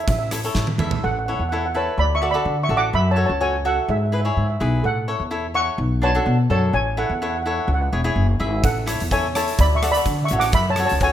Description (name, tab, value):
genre	calypso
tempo	126 BPM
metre	4/4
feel	straight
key	A major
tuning	A4 = 440 Hz
part	steel pan	melody	0.0-11.1 s	G#4 to D6	-23 LUFS	right 1 dB	none
part	cavaquinho	accompaniment	0.0-11.1 s	D4 to E5	-25 LUFS	left 1 dB	none
part	upright bass	bass	0.1-11.1 s	E1 to D3	-22 LUFS	left 1 dB	none
part	gated 80s drum kit	drums	0.1-1.0, 8.6-11.1 s	hi-hat, kick drum, rim click, snare drum, toms	-23 LUFS	right 1 dB	none
room	light reverb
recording	minimal, uncompressed stereo recording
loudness	-18 LUFS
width	side -11 dB against mid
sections	0.0-1.0 A section; 1.0-11.1 A section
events	drum fill 0.6-1.0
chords	0.0 A; 2.0 Dadd9; 2.9 F#m7; 3.9 E/G#; 4.8 A6; 5.8 Bm7; 6.7 A; 7.7 C#m; 8.6 A6; 9.6 Dadd9; 10.5 F#m7